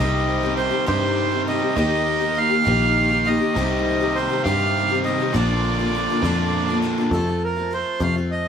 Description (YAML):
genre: folk rock and heartland rock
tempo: 67 BPM (dotted quarters)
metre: 6/8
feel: straight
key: C dorian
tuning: A4 = 439 Hz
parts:
  - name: accordion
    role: melody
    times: 0.0-8.5 s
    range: A4 to F5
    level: -23 LUFS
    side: right 3 dB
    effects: none
  - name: picked steel-string acoustic guitar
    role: accompaniment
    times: 0.0-8.5 s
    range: F2 to G4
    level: -26 LUFS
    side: left 8 dB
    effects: none
  - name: crunchy overdriven guitar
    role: riff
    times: 0.0-7.1 s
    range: Bb2 to G4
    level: -24 LUFS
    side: right 1 dB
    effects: none
  - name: picked electric bass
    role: bass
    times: 0.0-8.5 s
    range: Bb1 to G2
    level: -24 LUFS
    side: equal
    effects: none
room: light reverb, small room ambience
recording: none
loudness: -18 LUFS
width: side -7 dB against mid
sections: 0.0-7.1 A section; 7.1-8.5 B section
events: none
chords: 0.0 Cm; 1.8 Eb; 3.5 Cm; 5.3 Bb; 7.1 F